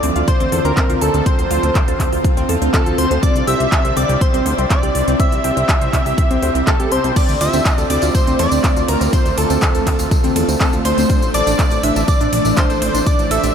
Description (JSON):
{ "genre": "progressive house", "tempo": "122 BPM", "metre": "4/4", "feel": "straight", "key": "D minor", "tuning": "A4 = 440 Hz", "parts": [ { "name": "shimmering ambient pad", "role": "sustained chords", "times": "0.0-13.5 s", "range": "C3 to G4", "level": "-24 LUFS", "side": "right 1 dB", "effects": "chorus, built-in reverb, phaser, sidechain pumping" }, { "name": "soft round pluck", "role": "arpeggios", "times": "0.0-13.5 s", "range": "C4 to D6", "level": "-22 LUFS", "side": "equal", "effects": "chorus, vintage 12-bit sampler grit, sidechain pumping, ping-pong delay" }, { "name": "fat analog bass", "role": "bass", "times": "0.0-13.5 s", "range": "A1 to E2", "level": "-20 LUFS", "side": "equal", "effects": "tube saturation, sidechain pumping" }, { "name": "big-room dance drum kit", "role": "drums", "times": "0.0-13.5 s", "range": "crash cymbal, handclaps, hi-hat, ride cymbal", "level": "-24 LUFS", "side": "equal", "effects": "overdrive, small room ambience" }, { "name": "wide unison lead", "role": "melody", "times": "0.3-13.5 s", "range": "A4 to E5", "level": "-20 LUFS", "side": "equal", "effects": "sidechain pumping, tape echo" }, { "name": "soft synth bell", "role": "second line", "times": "0.3-13.5 s", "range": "A5 to E6", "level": "-26 LUFS", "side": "equal", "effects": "chorus, phaser, sidechain pumping, ping-pong delay" }, { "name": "electronic kick drum", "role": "drums", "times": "0.3-13.2 s", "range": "none", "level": "-16 LUFS", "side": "equal", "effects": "small room ambience" }, { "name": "tambourine", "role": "percussion", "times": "7.2-13.5 s", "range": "none", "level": "-30 LUFS", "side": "right 2 dB", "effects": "none" } ], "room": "moderate huge ambient reverb, RT60 7.1 s", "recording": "dreamy mix soaked in reverb", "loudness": "-13 LUFS", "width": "side -8 dB against mid", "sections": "0.0-13.5 A section", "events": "none", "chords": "0.0 Dm7; 3.2 C; 7.2 Dm7; 11.1 Asus4" }